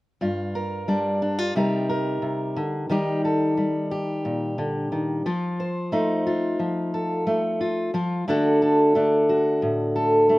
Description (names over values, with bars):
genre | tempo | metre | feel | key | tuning
folk | 89 BPM | 4/4 | straight | G minor | A4 = 444 Hz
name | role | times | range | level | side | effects
fingerpicked steel-string acoustic guitar | accompaniment | 0.2-10.4 s | G2 to C5 | -21 LUFS | equal | none
room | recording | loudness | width
little or no reverb | recorded outdoors, with no room sound | -21 LUFS | side -20 dB against mid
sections
0.2-10.4 A section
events
none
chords
0.2 Gm7; 1.6 Cm7; 2.9 Eb; 5.3 F7; 8.3 D